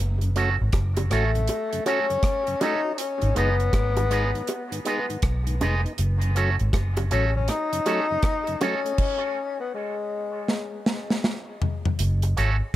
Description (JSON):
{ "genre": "dub reggae", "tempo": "80 BPM", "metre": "4/4", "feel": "swing 64% on 16ths", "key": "F# dorian", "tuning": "A4 = 439 Hz", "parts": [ { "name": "vintage muted fingered electric bass", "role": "bass", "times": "0.0-7.5, 12.0-12.6 s", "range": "E#1 to B1", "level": "-23 LUFS", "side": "equal", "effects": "none" }, { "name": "mellow tonewheel organ", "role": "accompaniment", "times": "0.2-12.7 s", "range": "F#2 to F#4", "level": "-33 LUFS", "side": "equal", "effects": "slow rotary speaker, high-pass filter" }, { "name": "deep reggae drum kit", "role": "drums", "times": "0.2-12.6 s", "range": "crash cymbal, hi-hat, kick drum, rim click, snare drum, toms", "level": "-26 LUFS", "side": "equal", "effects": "none" }, { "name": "electric guitar with an envelope filter", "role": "accompaniment", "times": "0.4-12.6 s", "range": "G#3 to A4", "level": "-30 LUFS", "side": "right 5 dB", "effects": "high-pass filter, dub echo" }, { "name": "bongos", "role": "percussion", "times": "0.7-12.4 s", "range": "none", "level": "-32 LUFS", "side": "right 2 dB", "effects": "high-pass filter on perc, dub echo" }, { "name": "breathy tenor saxophone", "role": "melody", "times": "1.1-10.8 s", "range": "G#3 to D#4", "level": "-28 LUFS", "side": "left 4 dB", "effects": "dub echo" } ], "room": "light reverb", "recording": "none", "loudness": "-22 LUFS", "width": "side -14 dB against mid", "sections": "0.0-12.0 A section", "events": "stop 9.0-12.0; drum fill 10.5-12.0", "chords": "0.0 F#m; 3.0 G#m; 6.0 F#m; 9.0 N.C.; 12.0 F#m" }